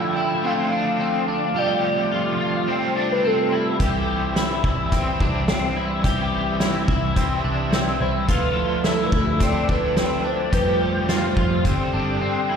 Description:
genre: dream pop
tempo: 107 BPM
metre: 4/4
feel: straight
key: C major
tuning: A4 = 441 Hz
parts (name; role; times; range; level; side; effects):
- warm velvety synth lead; melody; 0.0-3.7, 8.0-12.5 s; G4 to G5; -25 LUFS; equal; chorus, digital delay
- cranked stack guitar; accompaniment; 0.0-12.6 s; C3 to C5; -28 LUFS; right 6 dB; overdrive, tremolo, lush chorus
- bright tonewheel organ; sustained chords; 0.0-12.6 s; C3 to E5; -27 LUFS; equal; chorus vibrato, slow rotary speaker
- electric guitar at the edge of break-up; arpeggios; 0.0-12.6 s; C4 to G4; -25 LUFS; left 4 dB; ensemble chorus, digital delay
- vintage muted picked electric bass; bass; 3.8-12.2 s; G1 to F2; -26 LUFS; equal; none
- loose indie drum kit; drums; 3.8-11.8 s; hi-hat, kick drum, snare drum; -23 LUFS; equal; none
room: moderate lush hall reverb, RT60 1.6 s, studio reverb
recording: played on a big sound system in a bare room, stone room reverb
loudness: -19 LUFS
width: side -7 dB against mid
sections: 0.0-12.6 A section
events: none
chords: 0.0 Dmadd9; 1.6 Fadd9; 3.8 C; 8.3 Dmadd9; 10.5 Fadd9; 11.6 Gsus4

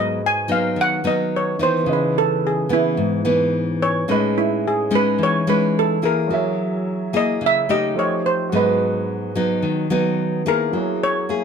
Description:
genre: bossa nova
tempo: 108 BPM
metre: 4/4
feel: straight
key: unclear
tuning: A4 = 440 Hz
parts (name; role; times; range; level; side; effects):
- steel pan; melody; 0.0-11.4 s; E4 to G#5; -20 LUFS; right 2 dB; none
- clear grand piano; accompaniment; 0.0-11.4 s; C#3 to E5; -28 LUFS; right 3 dB; none
- nylon-string guitar; accompaniment; 0.0-11.4 s; G#2 to G#4; -20 LUFS; left 1 dB; none
room: moderate studio reverb, RT60 0.6 s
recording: none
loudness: -17 LUFS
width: side -6 dB against mid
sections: 0.0-10.7 A section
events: steel pan solo 0.0-10.7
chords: 0.0 G#m7; 1.9 C#m9; 4.1 Amaj9#11; 6.3 F#9; 8.0 F9; 8.5 G#m7; 10.7 F#9

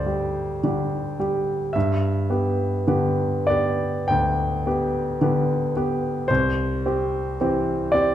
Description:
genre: classical, romantic nocturne for solo piano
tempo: 46-56 BPM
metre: 4/4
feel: rubato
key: G major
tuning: A4 = 441 Hz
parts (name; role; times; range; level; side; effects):
- clear grand piano; solo; 0.0-8.1 s; C2 to G5; -20 LUFS; equal; none
room: wet recital hall reverb, RT60 1.4 s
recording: dark, warm production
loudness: -20 LUFS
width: side -11 dB against mid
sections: 0.0-8.1 A section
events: none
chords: 0.0 G; 6.3 C

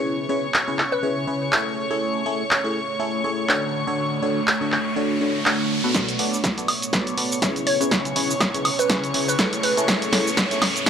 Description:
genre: piano house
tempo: 122 BPM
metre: 4/4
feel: swing 57% on 16ths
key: B dorian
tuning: A4 = 440 Hz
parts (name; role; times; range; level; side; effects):
- glassy wavetable pluck; melody; 0.0-1.1, 7.7-10.3 s; B4 to C#5; -27 LUFS; right 1 dB; chorus, analog delay
- clear studio string section; sustained chords; 0.0-10.9 s; C#5 to C#6; -29 LUFS; right 1 dB; vintage 12-bit sampler grit, sidechain pumping, low-pass filter
- barking FM electric piano; riff; 0.0-10.9 s; B2 to D5; -25 LUFS; left 2 dB; phaser, sidechain pumping, low-pass filter, analog delay
- deep dark ambient pad; texture; 0.0-10.9 s; A3 to B5; -31 LUFS; right 1 dB; chorus, built-in reverb, sidechain pumping
- punchy analog drum machine; drums; 0.5-10.9 s; handclaps, hi-hat, shaker, snare drum, woodblock; -22 LUFS; equal; none
- riser; sound effects; 3.2-10.9 s; none; -31 LUFS; right 1 dB; none
- electronic kick drum; drums; 5.9-10.9 s; none; -28 LUFS; equal; overdrive, high-pass filter on kick, high-pass filter on room
room: light reverb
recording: dry, gritty hardware recording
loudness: -19 LUFS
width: side -8 dB against mid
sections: 0.0-5.9 A section; 5.9-10.9 B section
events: riser 3.2-5.9, 5.9-10.9; build-up 5.9-10.9; drum fill 5.9-10.9; filter sweep on FM electric piano 5.9-10.9; filter sweep on string section 5.9-10.9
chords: 0.0 C#m7; 1.8 Amaj7; 3.7 Dmaj7; 5.9 Bm7; 7.7 C#m7; 9.6 Amaj7

